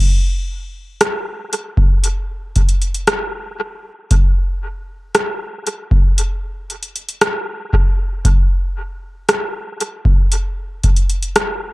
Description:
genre	R&B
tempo	58 BPM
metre	4/4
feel	straight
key	none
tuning	none
part	booming analog drum machine	drums	1.0-11.6 s	hi-hat, kick drum, rim click	-15 LUFS	equal	dub echo
room	light reverb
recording	echo-heavy mix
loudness	-15 LUFS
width	side -21 dB against mid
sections	0.0-11.7 A section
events	none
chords	none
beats	1.01 2.04 3.08 | 4.11 5.15 6.18 7.21 | 8.25 9.28 10.32 11.35

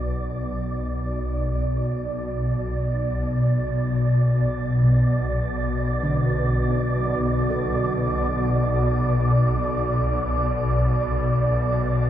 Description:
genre	dark ambient drone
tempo	free time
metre	none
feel	none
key	B minor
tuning	A4 = 440 Hz
part	gamelan-type bossed gongs	arpeggios	0.0-12.1 s	B2 to A4	-32 LUFS	right 1 dB	tape echo
part	swarming drone	drone	0.0-12.1 s	B1 to B2	-21 LUFS	equal	built-in reverb
part	wind-like tuned noise texture	texture	0.0-12.1 s	D5	-28 LUFS	right 2 dB	built-in reverb, shimmer reverb
room	wet huge ambient reverb, RT60 8.3 s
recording	none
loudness	-20 LUFS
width	side -11 dB against mid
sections	0.0-12.1 A section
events	none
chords	0.0 Bm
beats	free time

